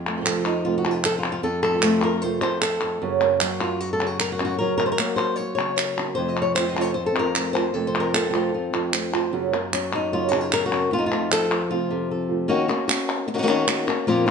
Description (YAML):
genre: flamenco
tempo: 152 BPM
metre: 4/4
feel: straight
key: F phrygian dominant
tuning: A4 = 440 Hz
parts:
  - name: flamenco guitar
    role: melody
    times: 0.0-14.3 s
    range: F2 to Eb5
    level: -23 LUFS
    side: left 3 dB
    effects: plate reverb
  - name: palmas hand claps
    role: percussion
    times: 0.1-14.3 s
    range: none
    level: -26 LUFS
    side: equal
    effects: none
  - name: flamenco guitar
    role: stabs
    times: 0.2-12.5 s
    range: F2 to Gb4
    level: -26 LUFS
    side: right 10 dB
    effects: none
room: wet stone room reverb, RT60 1.0 s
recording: nothing above 10.8 kHz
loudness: -20 LUFS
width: side -6 dB against mid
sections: 0.0-12.5 A section; 12.5-14.3 B section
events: break 11.7-12.5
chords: 0.0 F; 3.0 Gb; 6.2 F; 9.3 Gb; 10.9 F; 12.5 Ebm7